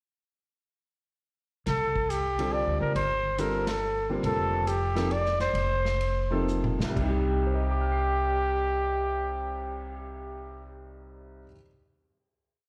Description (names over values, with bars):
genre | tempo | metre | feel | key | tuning
modal jazz | 120-140 BPM | 3/4 | swing 67% on 8ths | C dorian | A4 = 445 Hz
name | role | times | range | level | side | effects
mellow trumpet | melody | 1.7-10.7 s | G4 to D5 | -31 LUFS | equal | plate reverb, slapback echo
upright bass | bass | 1.7-11.4 s | F1 to D2 | -33 LUFS | equal | none
vintage drum kit | drums | 1.7-9.9 s | crash cymbal, cymbal swell, hi-hat, kick drum, ride cymbal, snare drum, toms | -41 LUFS | equal | slapback echo
clear baby grand piano | accompaniment | 2.4-11.7 s | C2 to C7 | -35 LUFS | equal | plate reverb, slapback echo
room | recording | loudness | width
moderate club reverb, RT60 0.8 s | live gig heard through the venue's PA, recital hall reverb | -28 LUFS | mono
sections
1.7-7.0 A section; 7.0-10.0 final chord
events
band accent 3.6; slowing down 4.2-7.0; drum fill 6.5-7.0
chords
1.7 Csus4; 4.2 F13sus4; 7.0 Cm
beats
| 1.67 2.10 2.52 | 2.95 3.38 3.81 | 4.24 4.67 5.10 | 5.54 6.00 6.47 | 6.96 7.47 7.97 | 8.47 8.97 9.47